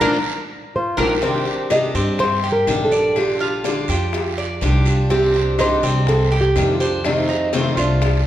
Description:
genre	latin, Cuban son and guajira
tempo	124 BPM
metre	4/4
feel	straight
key	unclear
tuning	A4 = 440 Hz
part	nylon-string guitar	melody	0.0-8.3 s	D4 to Eb5	-20 LUFS	equal	none
part	mellow silver concert flute	second line	0.0-1.9 s	F4 to Bb4	-26 LUFS	right 1 dB	none
part	picked acoustic archtop guitar	accompaniment	0.0-8.1 s	C3 to G4	-24 LUFS	left 2 dB	none
part	Cuban tres	arpeggios	0.0-8.2 s	C4 to D5	-24 LUFS	right 3 dB	none
part	upright bass	bass	0.0-8.3 s	Bb1 to G2	-21 LUFS	equal	none
part	bongos	percussion	0.0-8.3 s	none	-28 LUFS	left 5 dB	none
part	claves	percussion	0.0-8.0 s	none	-35 LUFS	left 7 dB	none
part	guiro	percussion	0.0-8.3 s	none	-32 LUFS	right 4 dB	none
room	wet recital hall reverb, RT60 1.8 s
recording	recorded in a church or concert hall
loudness	-16 LUFS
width	side -12 dB against mid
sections	0.0-1.2 A section; 1.2-8.3 B section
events	band accent 0.0-1.2; drum fill 0.5-1.2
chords	0.0 Bb; 1.2 Cmadd9; 3.2 Bb6; 5.1 Cmadd9; 7.0 F7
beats	0.25 0.74 | 1.22 1.71 2.19 2.68 | 3.16 3.65 4.13 4.62 | 5.11 5.59 6.08 6.56 | 7.05 7.53 8.02

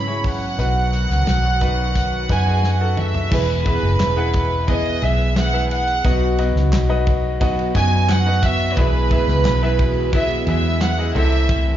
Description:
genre	piano-driven pop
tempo	88 BPM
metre	4/4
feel	straight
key	E major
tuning	A4 = 440 Hz
part	warm studio violin section	melody	0.0-11.8 s	B4 to B5	-22 LUFS	right 2 dB	slapback echo
part	clear baby grand piano	accompaniment	0.0-11.8 s	B2 to G#5	-26 LUFS	left 2 dB	slapback echo
part	warm analog pad	sustained chords	0.0-3.3, 8.8-11.8 s	B2 to F#4	-31 LUFS	equal	chorus, tremolo
part	vintage muted fingered electric bass	bass	0.0-11.8 s	E1 to G#2	-19 LUFS	equal	none
part	loose indie drum kit	drums	0.2-11.7 s	crash cymbal, hi-hat, kick drum, ride cymbal, snare drum, toms	-24 LUFS	equal	none
part	mellow French horn section	second line	3.3-11.8 s	E3 to G#4	-30 LUFS	left 5 dB	slapback echo
part	fingerpicked plugged-in steel-string acoustic guitar	riff	3.3-11.8 s	B2 to A4	-27 LUFS	right 8 dB	slapback echo
part	group handclap	percussion	4.0-11.0 s	none	-36 LUFS	equal	none
room	small room ambience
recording	live gig heard through the venue's PA, club reverb, nothing above 7.5 kHz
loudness	-16 LUFS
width	side -11 dB against mid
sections	0.0-3.3 A section; 3.3-11.8 B section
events	drum fill 2.6-3.3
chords	0.0 C#m7; 0.6 B; 3.3 E; 6.0 B; 8.8 E/B; 11.2 Am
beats	| 0.59 1.27 1.95 2.64 | 3.32 4.00 4.68 5.36 | 6.05 6.73 7.41 8.09 | 8.77 9.45 10.13 10.81 | 11.49

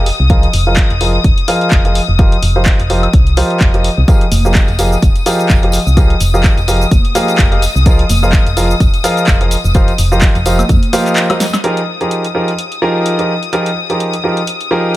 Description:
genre	piano house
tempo	127 BPM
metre	4/4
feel	swing 56% on 16ths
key	F minor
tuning	A4 = 440 Hz
part	warm studio string section	sustained chords	0.0-15.0 s	Eb6	-21 LUFS	left 5 dB	sidechain pumping
part	clear baby grand piano	riff	0.0-15.0 s	F3 to F5	-15 LUFS	equal	sidechain pumping, low-pass filter
part	solid FM bass	bass	0.0-10.8 s	F1 to F2	-14 LUFS	equal	sidechain pumping
part	punchy analog drum machine	drums	0.1-14.7 s	handclaps, hi-hat, shaker, snare drum, woodblock	-20 LUFS	equal	none
part	electronic kick drum	drums	0.3-10.8 s	none	-11 LUFS	equal	none
part	tambourine and congas	percussion	4.1-11.6 s	none	-25 LUFS	right 4 dB	none
room	studio reverb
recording	none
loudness	-10 LUFS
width	side -16 dB against mid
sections	0.0-11.6 A section; 11.6-15.0 B section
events	drum fill 11.3-11.6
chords	0.1 Bb7sus4/F; 2.2 Eb69/F; 4.1 Fm11; 7.6 Bb7sus4/F; 9.7 Eb69/F; 11.6 Fm11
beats	| 0.30 0.77 1.25 1.72 | 2.19 2.66 3.13 3.61 | 4.08 4.55 5.02 5.50 | 5.97 6.44 6.91 7.39 | 7.86 8.33 8.80 9.28 | 9.75 10.22 10.69 11.17 | 11.64 12.11 12.58 13.06 | 13.53 14.00 14.47 14.95

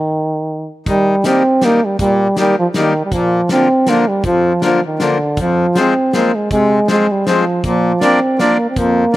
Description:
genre	alpine folk, alpine dance band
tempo	160 BPM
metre	3/4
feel	swing 54% on 8ths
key	Eb major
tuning	A4 = 440 Hz
part	clear euphonium	melody	0.0-9.2 s	D3 to C4	-14 LUFS	right 1 dB	slapback echo
part	accordion	accompaniment	0.9-9.2 s	F2 to D4	-16 LUFS	left 3 dB	slapback echo
part	loose indie drum kit	drums	0.9-9.2 s	hi-hat, kick drum, snare drum	-23 LUFS	left 1 dB	none
room	little or no reverb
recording	none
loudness	-12 LUFS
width	side -16 dB against mid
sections	0.9-9.2 A section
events	stop 0.0-0.9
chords	0.0 N.C.; 0.9 Eb; 3.1 Bb; 5.4 Fm; 7.6 Bbadd9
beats	0.10 0.48 | 0.87 1.24 1.62 | 2.00 2.37 2.74 | 3.12 3.50 3.87 | 4.24 4.62 5.00 | 5.38 5.75 6.13 | 6.50 6.88 7.26 | 7.63 8.01 8.39 | 8.76 9.14

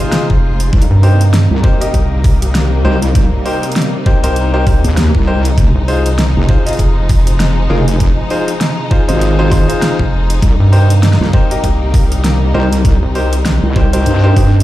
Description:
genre	glitch hop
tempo	99 BPM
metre	4/4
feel	swing 58% on 16ths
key	F minor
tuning	A4 = 440 Hz
part	warm symphonic string section	sustained chords	0.0-14.6 s	C3 to F4	-20 LUFS	equal	sidechain pumping
part	bright concert grand piano	stabs	0.0-14.5 s	Eb4 to Eb5	-19 LUFS	left 1 dB	vintage 12-bit sampler grit, sidechain pumping, digital delay
part	pop drum kit	drums	0.1-14.6 s	hi-hat, rim click, snare drum	-19 LUFS	equal	overdrive
part	rubbery square bass	bass	0.3-13.6 s	F1 to G2	-12 LUFS	equal	none
part	electronic kick drum	drums	0.3-14.5 s	none	-12 LUFS	equal	overdrive
part	wobble bass	bass	0.7-14.6 s	F1 to G2	-12 LUFS	equal	chorus
room	little or no reverb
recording	played on a big sound system in a bare room, large studio reverb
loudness	-10 LUFS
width	side -15 dB against mid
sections	0.0-14.6 A section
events	none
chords	0.0 Fm7; 0.7 Cm7; 5.6 Fm7; 10.4 Cm7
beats	0.12 | 0.73 1.33 1.94 2.54 | 3.15 3.76 4.36 4.97 | 5.58 6.18 6.79 7.39 | 8.00 8.61 9.21 9.82 | 10.42 11.03 11.64 12.24 | 12.85 13.45 14.06

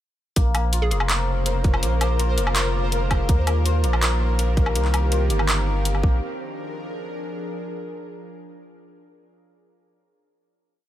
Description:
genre	half-time drum and bass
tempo	164 BPM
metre	4/4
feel	half-time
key	Bb dorian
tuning	A4 = 441 Hz
part	bowed-like drone	sustained chords	0.8-7.6 s	Db3 to Bb4	-30 LUFS	equal	built-in reverb, sidechain pumping
part	santur	arpeggios	0.4-8.4 s	Bb3 to Bb4	-30 LUFS	left 4 dB	tape echo
part	saturated sub bass	bass	0.4-6.2 s	F1 to Eb2	-22 LUFS	equal	none
part	drum and bass drum kit	drums	0.4-6.0 s	handclaps, hi-hat, woodblock	-26 LUFS	equal	overdrive, studio ambience
part	electronic kick drum	drums	0.4-6.1 s	none	-20 LUFS	equal	overdrive, studio ambience
part	pulsing gated texture	texture	0.7-6.2 s	C5	-34 LUFS	equal	chorus, built-in reverb
part	hollow square pluck	melody	0.8-1.0 s	Ab4	-33 LUFS	right 2 dB	chorus, tape echo
room	light reverb, digital ambience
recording	none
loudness	-19 LUFS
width	side -12 dB against mid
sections	0.4-6.2 drop; 6.2-7.7 final chord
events	drop 0.4-6.2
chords	0.4 Bbm; 1.8 Bb7; 3.3 Eb; 4.8 Cm7; 6.0 Bb; 6.2 Bb7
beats	| 0.36 0.73 1.09 1.46 | 1.83 2.19 2.56 2.92 | 3.29 3.65 4.02 4.39 | 4.75 5.12 5.48 5.85 | 6.22 6.58 6.95 7.31

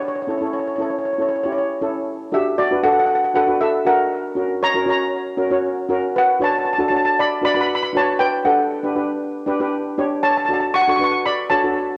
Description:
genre	calypso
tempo	118 BPM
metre	4/4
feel	straight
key	D major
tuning	A4 = 441 Hz
part	steel pan	melody	0.0-12.0 s	F#4 to C#6	-20 LUFS	equal	cassette tape, tape echo
part	steel pan	accompaniment	0.0-11.9 s	C#4 to C#5	-24 LUFS	equal	cassette tape
room	wet spring reverb, RT60 2.0 s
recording	home recording on cassette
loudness	-19 LUFS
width	mono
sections	0.0-2.1 A section; 2.1-12.0 B section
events	none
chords	0.0 A; 2.1 D; 4.1 F#; 6.1 Bm; 8.2 Gmaj7; 10.2 Dmaj7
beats	| 0.02 0.53 1.05 1.56 | 2.07 2.58 3.09 3.60 | 4.11 4.62 5.13 5.64 | 6.15 6.66 7.17 7.68 | 8.19 8.70 9.21 9.71 | 10.22 10.73 11.24 11.75

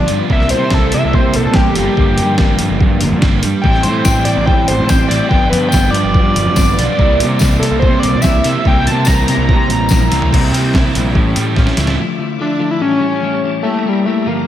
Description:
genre	indie rock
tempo	144 BPM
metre	4/4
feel	straight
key	unclear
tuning	A4 = 440 Hz
part	overdriven synth lead	melody	0.0-14.5 s	G3 to Bb5	-17 LUFS	left 1 dB	distortion, tape echo
part	biting overdriven guitar	riff	0.0-12.0 s	G2 to F4	-19 LUFS	right 6 dB	analog chorus
part	twelve-string electric guitar	riff	0.0-14.5 s	G2 to G4	-20 LUFS	left 5 dB	spring reverb
part	fuzz picked electric bass	bass	0.0-12.0 s	G1 to C3	-17 LUFS	equal	overdrive
part	boom bap sampler-style drum kit	drums	0.1-12.0 s	crash cymbal, hi-hat, kick drum, snare drum, toms	-15 LUFS	equal	none
part	bright tonewheel organ	sustained chords	3.6-14.5 s	E4 to D6	-28 LUFS	equal	none
part	tambourine	percussion	4.0-10.0 s	none	-28 LUFS	left 5 dB	none
room	moderate lush hall reverb, RT60 1.8 s, digital ambience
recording	dreamy mix soaked in reverb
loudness	-11 LUFS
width	side -11 dB against mid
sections	0.0-10.3 A section; 10.3-12.0 B section; 12.0-14.5 C section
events	analog synth lead solo 0.0-10.3; drum fill 10.1, 11.6-12.0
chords	0.3 C7; 1.8 Gm7; 3.6 Am7; 5.3 G7; 7.0 C7; 11.2 A7; 12.0 Dmadd9; 12.8 A7; 13.7 Edim/G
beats	| 0.31 0.73 1.15 1.56 | 1.98 2.40 2.81 3.23 | 3.65 4.07 4.48 4.90 | 5.32 5.73 6.15 6.57 | 6.98 7.40 7.82 8.23 | 8.65 9.06 9.48 9.90 | 10.32 10.73 11.15 11.57 | 11.98 12.40 12.82 13.23 | 13.65 14.07

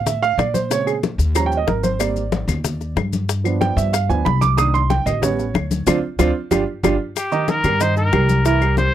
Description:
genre	latin, salsa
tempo	186 BPM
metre	4/4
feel	straight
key	C minor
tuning	A4 = 440 Hz
part	dark grand piano	accompaniment	0.0-8.9 s	Db3 to Eb6	-20 LUFS	right 6 dB	none
part	upright bass	bass	0.0-8.9 s	G1 to Bb2	-20 LUFS	left 1 dB	none
part	bongos	percussion	0.1-8.9 s	none	-25 LUFS	left 10 dB	none
part	congas	percussion	0.1-8.9 s	none	-25 LUFS	left 4 dB	none
part	maracas	percussion	0.1-8.9 s	none	-32 LUFS	left 14 dB	none
part	claves	percussion	0.4-8.8 s	none	-29 LUFS	left 16 dB	none
part	bright trumpet	melody	7.2-8.9 s	G4 to C5	-20 LUFS	left 2 dB	none
room	little or no reverb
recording	dry, close 1970s-style studio recording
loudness	-16 LUFS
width	side -11 dB against mid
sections	0.0-7.2 A section; 7.2-8.9 B section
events	grand piano solo 0.0-7.2; band accent 5.9-7.2; drum fill 6.5-7.2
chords	0.0 Fmaj7; 0.7 Bbm7; 1.4 Eb7; 2.0 Abmaj7; 3.3 G7; 4.6 Cm7; 5.2 A7; 5.9 Dm7; 6.5 G5; 7.2 Cm7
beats	0.06 0.39 | 0.71 1.03 1.35 1.68 | 2.00 2.32 2.65 2.97 | 3.29 3.61 3.94 4.26 | 4.58 4.90 5.23 5.55 | 5.87 6.19 6.52 6.84 | 7.16 7.49 7.81 8.13 | 8.45 8.78

